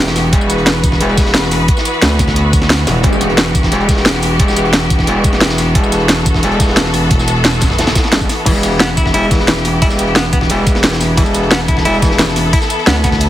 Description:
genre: dark technical drum and bass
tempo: 177 BPM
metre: 4/4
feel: straight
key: E minor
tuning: A4 = 435 Hz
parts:
  - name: bright symphonic string section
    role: sustained chords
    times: 0.0-13.3 s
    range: E3 to B4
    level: -18 LUFS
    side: left 1 dB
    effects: vintage 12-bit sampler grit, sidechain pumping
  - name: metallic wobble bass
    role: bass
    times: 0.0-12.5 s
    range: E1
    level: -15 LUFS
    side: equal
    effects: chorus, overdrive, sidechain pumping
  - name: crunchy breakbeat drum kit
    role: drums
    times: 0.1-13.3 s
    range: hi-hat, snare drum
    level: -23 LUFS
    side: equal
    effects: none
  - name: drum and bass drum kit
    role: drums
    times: 0.2-13.3 s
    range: crash cymbal, hi-hat, ride cymbal, snare drum, tambourine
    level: -16 LUFS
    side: equal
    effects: overdrive
  - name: electronic kick drum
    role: drums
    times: 0.3-13.2 s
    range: none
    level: -14 LUFS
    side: equal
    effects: overdrive
  - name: growling FM bass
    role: bass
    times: 2.0-3.0, 7.1-7.9, 12.9-13.3 s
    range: E1 to D2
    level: -14 LUFS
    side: equal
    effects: none
  - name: zap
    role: sound effects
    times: 2.9-3.0 s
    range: none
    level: -21 LUFS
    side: left 1 dB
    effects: none
  - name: semi-hollow electric guitar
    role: arpeggios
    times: 8.5-13.1 s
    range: E3 to E4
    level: -18 LUFS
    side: left 2 dB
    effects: sidechain pumping, ping-pong delay
room: light reverb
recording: heavily compressed radio sound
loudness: -10 LUFS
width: side -13 dB against mid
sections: 0.0-13.3 A section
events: none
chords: 0.0 Emadd9

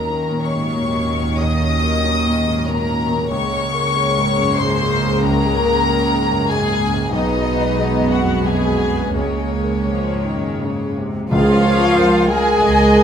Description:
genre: cinematic, emotional film score for orchestra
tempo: 83-95 BPM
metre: 3/4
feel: rubato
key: Db major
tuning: A4 = 443 Hz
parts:
  - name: warm chamber violin section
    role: melody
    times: 0.0-13.0 s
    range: Db5 to Eb6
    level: -23 LUFS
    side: left 4 dB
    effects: none
  - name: warm symphonic violin section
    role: second line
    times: 0.0-13.0 s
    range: Db4 to Eb5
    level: -23 LUFS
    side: left 2 dB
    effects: none
  - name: rich studio viola section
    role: accompaniment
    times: 0.0-13.0 s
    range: Gb3 to Eb5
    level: -24 LUFS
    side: right 3 dB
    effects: none
  - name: warm grand piano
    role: accompaniment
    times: 0.0-13.0 s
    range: Cb2 to F5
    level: -24 LUFS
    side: left 2 dB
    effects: none
  - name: rich symphonic cello section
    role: bass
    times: 0.0-13.0 s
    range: Cb3 to Ab3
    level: -24 LUFS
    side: right 2 dB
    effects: none
  - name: warm symphonic double bass section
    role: bass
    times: 0.0-13.0 s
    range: Cb2 to Eb2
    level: -22 LUFS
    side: right 3 dB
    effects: none
  - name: concert flute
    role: second line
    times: 11.3-13.0 s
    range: F5 to Ab5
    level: -21 LUFS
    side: left 2 dB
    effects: none
  - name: warm clarinet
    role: second line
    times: 11.3-13.0 s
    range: F4 to Ab4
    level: -20 LUFS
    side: equal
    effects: none
  - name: mellow French horn section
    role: sustained chords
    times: 11.3-13.0 s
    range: Ab3 to Bb4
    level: -21 LUFS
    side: left 1 dB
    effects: none
  - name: timpani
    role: percussion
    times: 11.3-12.3 s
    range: Db3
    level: -23 LUFS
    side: right 1 dB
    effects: none
room: moderate recital hall reverb, RT60 1.4 s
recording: none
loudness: -15 LUFS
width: side -8 dB against mid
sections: 0.0-11.3 A section; 11.3-13.0 A section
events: none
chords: 0.0 Ebm7; 3.3 Gbadd9/Db; 7.1 Cb6; 9.2 Db6

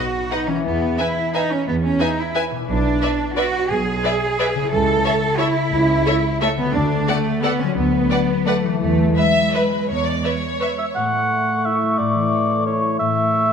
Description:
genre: classical, orchestral ballroom waltz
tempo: 158-191 BPM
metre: 3/4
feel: rubato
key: A major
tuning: A4 = 440 Hz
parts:
  - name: rich symphonic violin section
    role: melody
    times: 0.0-10.7 s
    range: E5 to G#5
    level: -28 LUFS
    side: left 3 dB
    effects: none
  - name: rich symphonic violin section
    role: second line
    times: 0.0-11.0 s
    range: B4 to E5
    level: -25 LUFS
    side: left 2 dB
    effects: none
  - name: rich symphonic viola section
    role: accompaniment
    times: 0.0-10.7 s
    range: A4 to B4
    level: -28 LUFS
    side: right 2 dB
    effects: none
  - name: concert harp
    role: arpeggios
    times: 0.0-13.5 s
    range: A2 to C#5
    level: -24 LUFS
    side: left 9 dB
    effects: none
  - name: rich symphonic cello section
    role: bass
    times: 0.0-10.8 s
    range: G#3 to A4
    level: -21 LUFS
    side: right 2 dB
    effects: none
  - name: rich symphonic double bass section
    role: bass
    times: 0.6-10.2 s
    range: B1 to E2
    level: -24 LUFS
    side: right 3 dB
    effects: none
  - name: dark cor anglais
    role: second line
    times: 10.6-13.5 s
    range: C#5 to F#5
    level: -20 LUFS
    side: right 2 dB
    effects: none
  - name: mellow hollow silver concert flute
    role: second line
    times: 11.0-13.5 s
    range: C#6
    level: -24 LUFS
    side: left 3 dB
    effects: none
  - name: warm clarinet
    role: second line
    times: 11.0-13.5 s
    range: A3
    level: -25 LUFS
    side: right 1 dB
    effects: none
room: moderate scoring stage reverb, RT60 1.6 s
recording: none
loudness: -17 LUFS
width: side -6 dB against mid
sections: 0.0-11.0 A section; 11.0-13.5 B section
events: none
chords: 0.0 B; 0.6 E; 2.7 E7/B; 4.7 A/C#; 6.7 D; 7.8 Bm/D; 8.8 E; 11.0 A

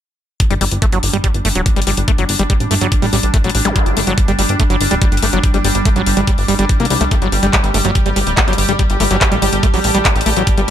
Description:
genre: psychedelic trance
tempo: 143 BPM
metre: 4/4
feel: straight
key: unclear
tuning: A4 = 441 Hz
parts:
  - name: pulsing gated texture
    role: sustained chords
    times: 0.7-10.7 s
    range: G3 to G4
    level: -20 LUFS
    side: right 1 dB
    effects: chorus, built-in reverb, sidechain pumping
  - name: drum and bass drum kit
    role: drums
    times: 0.4-10.7 s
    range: handclaps, hi-hat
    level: -19 LUFS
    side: left 2 dB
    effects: none
  - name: electronic kick drum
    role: drums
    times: 0.4-10.6 s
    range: none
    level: -15 LUFS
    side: equal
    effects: none
  - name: granular cloud pad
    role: texture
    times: 2.1-10.7 s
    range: G4 to D6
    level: -30 LUFS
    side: right 1 dB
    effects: none
  - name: overdriven acid bass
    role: riff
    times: 0.5-10.7 s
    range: F#3 to Bb3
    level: -20 LUFS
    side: moving between left 8 dB and right 6 dB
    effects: auto-pan, sidechain pumping, ping-pong delay
  - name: plucky analog bass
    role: bass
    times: 0.5-10.7 s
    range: D1 to C2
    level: -18 LUFS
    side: equal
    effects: none
  - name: zap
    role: sound effects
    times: 3.7-3.8 s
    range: none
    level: -23 LUFS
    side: equal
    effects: none
room: little or no reverb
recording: none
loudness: -12 LUFS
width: side -10 dB against mid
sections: 0.4-10.7 A section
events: none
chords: 0.4 G5

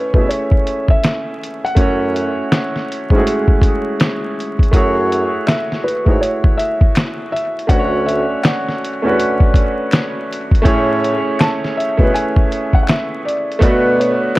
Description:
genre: lo-fi hip hop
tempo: 81 BPM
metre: 4/4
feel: swing 64% on 16ths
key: F# minor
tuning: A4 = 440 Hz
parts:
  - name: felt-muted upright piano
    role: melody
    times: 0.0-14.4 s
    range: B4 to A5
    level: -22 LUFS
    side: equal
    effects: low-pass filter, dub echo
  - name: warm upright piano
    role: accompaniment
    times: 0.0-14.4 s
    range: G#3 to G#5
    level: -18 LUFS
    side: right 1 dB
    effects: low-pass filter, dub echo
  - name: dark bassoon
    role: bass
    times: 0.1-14.2 s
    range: D2 to B2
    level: -19 LUFS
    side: equal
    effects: none
  - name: lo-fi sampler-style drum kit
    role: drums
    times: 0.1-14.2 s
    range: hi-hat, kick drum, snare drum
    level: -14 LUFS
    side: equal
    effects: none
  - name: finger snaps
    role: percussion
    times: 5.5-14.4 s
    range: none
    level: -36 LUFS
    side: left 3 dB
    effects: none
room: light reverb, small room ambience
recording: echo-heavy mix, vinyl crackle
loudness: -13 LUFS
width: side -19 dB against mid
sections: 0.0-4.7 A section; 4.7-14.4 B section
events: none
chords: 0.0 Amaj7; 1.8 F#m9; 7.7 Dmaj7; 10.7 Amaj7; 13.6 Bm7

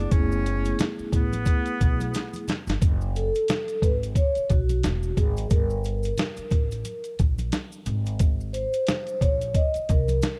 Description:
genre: hip hop, jazz-hop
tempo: 89 BPM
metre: 4/4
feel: swing 59% on 16ths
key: F# minor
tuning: A4 = 440 Hz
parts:
  - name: breathy tenor saxophone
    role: melody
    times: 0.0-2.4 s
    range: B3 to D4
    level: -34 LUFS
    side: equal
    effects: none
  - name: vibraphone with soft mallets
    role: accompaniment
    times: 0.0-10.4 s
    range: A3 to D#5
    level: -31 LUFS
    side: equal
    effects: none
  - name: upright bass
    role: bass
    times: 0.0-10.2 s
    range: E1 to B#1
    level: -30 LUFS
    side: equal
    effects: none
  - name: boom bap sampler-style drum kit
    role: drums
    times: 0.1-10.4 s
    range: hi-hat, kick drum, snare drum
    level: -26 LUFS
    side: equal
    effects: none
  - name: maracas and congas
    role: percussion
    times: 0.1-10.4 s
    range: none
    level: -42 LUFS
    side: equal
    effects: none
room: little or no reverb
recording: dark, warm production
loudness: -25 LUFS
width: mono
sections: 0.0-2.8 A section; 2.8-10.4 B section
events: drum fill 2.1-2.8; vibraphone solo 2.8-10.4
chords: 0.0 F#m11; 2.8 F#madd9; 4.8 Eadd9; 5.5 Gmadd9; 7.9 G#

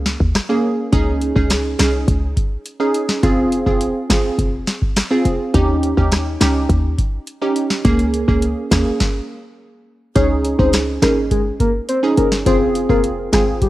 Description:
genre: dancehall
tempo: 104 BPM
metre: 4/4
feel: straight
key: unclear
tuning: A4 = 440 Hz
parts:
  - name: short 808-style bass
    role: bass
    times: 0.0-13.7 s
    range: F1 to Eb2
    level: -19 LUFS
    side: equal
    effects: none
  - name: booming analog drum machine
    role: drums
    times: 0.1-13.7 s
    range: hi-hat, kick drum, rim click, snare drum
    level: -19 LUFS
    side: equal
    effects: cassette tape
  - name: glassy wavetable pluck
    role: accompaniment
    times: 0.5-13.5 s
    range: Bb3 to Ab4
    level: -18 LUFS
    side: right 2 dB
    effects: chorus, cassette tape
  - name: soft octave-layered synth lead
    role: melody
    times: 10.2-13.7 s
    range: G4 to Db5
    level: -19 LUFS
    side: left 2 dB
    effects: chorus, phaser, tape echo
room: little or no reverb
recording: home recording on cassette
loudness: -15 LUFS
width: side -16 dB against mid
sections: 0.9-10.2 A section; 10.2-13.7 B section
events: stop 9.0-10.2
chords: 0.0 Bbm7/Db; 0.9 Dbsus2; 3.2 Fm; 5.5 Eb7; 7.8 Bbm7/Db; 10.2 Dbsus2; 12.5 Fm

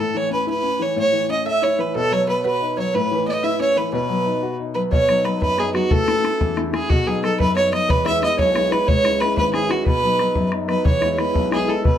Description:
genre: celtic folk, Celtic jig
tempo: 121 BPM (dotted quarters)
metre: 6/8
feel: straight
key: B mixolydian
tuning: A4 = 440 Hz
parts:
  - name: rich fiddle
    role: melody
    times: 0.0-12.0 s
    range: F#4 to E5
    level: -20 LUFS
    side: right 1 dB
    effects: none
  - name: warm grand piano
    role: accompaniment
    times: 0.0-12.0 s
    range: G#1 to A4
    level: -23 LUFS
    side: left 4 dB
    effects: none
  - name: concert harp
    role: second line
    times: 1.0-12.0 s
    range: F#4 to E5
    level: -25 LUFS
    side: right 5 dB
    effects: none
  - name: bodhran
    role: percussion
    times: 4.9-11.9 s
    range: none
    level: -21 LUFS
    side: equal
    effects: none
room: moderate studio reverb, RT60 0.5 s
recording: none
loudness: -17 LUFS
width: side -10 dB against mid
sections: 0.0-4.9 A section; 4.9-12.0 B section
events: none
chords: 0.0 A; 2.0 B; 2.9 Aadd9; 3.9 B; 5.9 A; 6.9 B; 7.9 E; 8.9 C#m; 9.9 B; 10.9 E

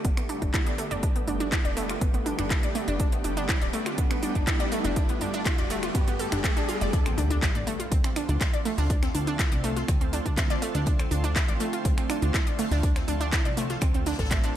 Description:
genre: progressive house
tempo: 122 BPM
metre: 4/4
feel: straight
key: D dorian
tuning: A4 = 440 Hz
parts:
  - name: shimmering ambient pad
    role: sustained chords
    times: 0.0-14.6 s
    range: D3 to G4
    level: -34 LUFS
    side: equal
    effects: chorus, built-in reverb, sidechain pumping
  - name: analog pluck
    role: arpeggios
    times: 0.0-14.5 s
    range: A3 to D5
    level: -31 LUFS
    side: right 1 dB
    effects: chorus, sidechain pumping, tape echo
  - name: plucky analog bass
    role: bass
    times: 0.0-14.5 s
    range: D1 to G2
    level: -30 LUFS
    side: equal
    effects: sidechain pumping
  - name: electronic kick drum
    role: drums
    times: 0.0-14.4 s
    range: none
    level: -26 LUFS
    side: equal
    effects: none
  - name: house drum kit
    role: drums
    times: 0.0-14.5 s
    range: finger snaps, handclaps, hi-hat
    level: -33 LUFS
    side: equal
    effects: sidechain pumping on hats
  - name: riser and impact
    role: sound effects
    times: 2.2-8.9 s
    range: none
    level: -36 LUFS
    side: equal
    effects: none
  - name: swinging big-band drum kit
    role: drums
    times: 6.9-14.5 s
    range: hi-hat, snare drum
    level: -42 LUFS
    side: left 2 dB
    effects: none
room: light reverb, digital ambience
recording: none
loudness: -24 LUFS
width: side -11 dB against mid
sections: 0.0-6.9 A section; 6.9-14.6 B section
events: build-up 0.0-6.9; filter sweep on synth arpeggio sound 0.0-6.9; filter sweep on ambient pad 0.0-6.9; riser 2.2-6.9; drop 6.9-14.6; impact 6.9-8.9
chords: 0.0 Gadd9; 6.9 Dm7

